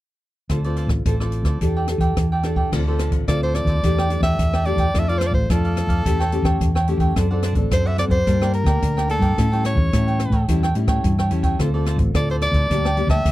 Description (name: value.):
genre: samba and choro.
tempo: 108 BPM.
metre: 4/4.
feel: straight.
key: D minor.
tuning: A4 = 436 Hz.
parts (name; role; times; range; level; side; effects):
cavaquinho; accompaniment; 0.5-13.3 s; D4 to A5; -28 LUFS; right 3 dB; none.
nylon-string guitar; accompaniment; 0.5-13.3 s; G2 to Bb4; -26 LUFS; left 2 dB; none.
hollow-body short-scale fingered electric bass; bass; 0.5-13.3 s; A1 to A2; -20 LUFS; equal; none.
open jazz drum kit; drums; 0.5-13.3 s; crash cymbal, hi-hat, kick drum, rim click; -23 LUFS; equal; none.
bright soprano saxophone; melody; 3.3-13.3 s; A4 to E5; -24 LUFS; equal; none.
room: little or no reverb.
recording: dry, close 1970s-style studio recording.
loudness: -17 LUFS.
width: side -16 dB against mid.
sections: 0.5-2.7 A section; 2.7-13.3 B section.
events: none.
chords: 0.5 Dm7; 1.6 A7sus4/E; 2.7 Dm7; 3.8 A7sus4/E; 4.9 Dm; 6.1 A7/E; 7.2 D7; 8.3 Gm; 9.4 A7; 11.6 Dm7; 12.7 Gmadd9/D.